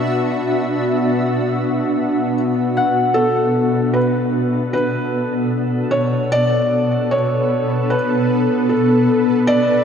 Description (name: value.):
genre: ambient.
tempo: 76 BPM.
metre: 4/4.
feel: straight.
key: B minor.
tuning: A4 = 439 Hz.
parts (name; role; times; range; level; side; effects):
felt-muted upright piano; melody; 0.0-9.8 s; F#4 to D5; -20 LUFS; equal; shimmer reverb, analog delay.
shimmering ambient pad; sustained chords; 0.0-9.8 s; B2 to E5; -17 LUFS; equal; chorus, built-in reverb, shimmer reverb.
bowed-like drone; drone; 0.0-3.3 s; B3 to F#4; -28 LUFS; equal; built-in reverb.
concert harp; arpeggios; 2.8-4.4 s; F#5; -21 LUFS; left 3 dB; shimmer reverb, analog delay.
room: wet lush hall reverb, RT60 2.6 s.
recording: dreamy mix soaked in reverb.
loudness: -15 LUFS.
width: side -7 dB against mid.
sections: 0.0-3.2 A section; 3.2-9.8 B section.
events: none.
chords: 0.0 Dadd9/B; 3.2 Bm7.